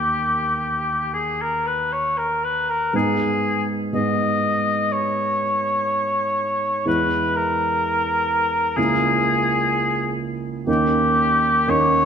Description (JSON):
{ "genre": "classical, romantic duo for oboe and grand piano", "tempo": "57-64 BPM", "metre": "4/4", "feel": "rubato", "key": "G# minor", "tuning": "A4 = 438 Hz", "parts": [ { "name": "warm oboe", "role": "melody", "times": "0.0-12.1 s", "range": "G4 to D#5", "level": "-20 LUFS", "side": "left 2 dB", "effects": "none" }, { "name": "dark baby grand piano", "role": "accompaniment", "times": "0.0-12.1 s", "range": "C#2 to E4", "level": "-24 LUFS", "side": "right 3 dB", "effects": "none" } ], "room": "wet scoring stage reverb, RT60 1.8 s", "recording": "none", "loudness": "-18 LUFS", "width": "side -7 dB against mid", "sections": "0.0-12.1 A section", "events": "none", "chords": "0.0 D#; 2.9 G#m; 6.9 E; 8.8 A#m7b5/C#; 10.7 D#7" }